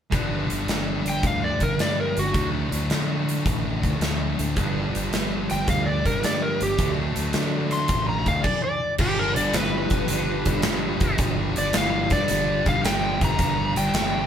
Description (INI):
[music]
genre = blues rock power trio and southern rock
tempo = 109 BPM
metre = 4/4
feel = swing 68% on 8ths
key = G mixolydian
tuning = A4 = 440 Hz
[part]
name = thick fuzz guitar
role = riff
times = 0.1-14.3 s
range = G2 to D4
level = -27 LUFS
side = equal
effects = distortion
[part]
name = growling fingered electric bass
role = bass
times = 0.1-14.3 s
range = G1 to D3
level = -28 LUFS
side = equal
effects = overdrive
[part]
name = big rock drum kit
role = drums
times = 0.1-14.1 s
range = crash cymbal, hi-hat, kick drum, snare drum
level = -25 LUFS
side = equal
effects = none
[part]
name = overdriven slide guitar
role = melody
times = 1.1-14.3 s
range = F#4 to C6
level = -25 LUFS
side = left 1 dB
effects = none
[part]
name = tonewheel organ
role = sustained chords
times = 4.6-14.3 s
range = D4 to F5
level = -34 LUFS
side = right 4 dB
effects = chorus vibrato, stopped rotary speaker
[sound]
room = moderate studio reverb, RT60 0.5 s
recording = band playing live in one room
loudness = -21 LUFS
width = side -8 dB against mid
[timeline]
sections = 0.1-9.0 A section; 9.0-14.3 B section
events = none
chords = 0.1 G; 2.4 D; 4.6 G7; 6.8 D7; 9.0 G7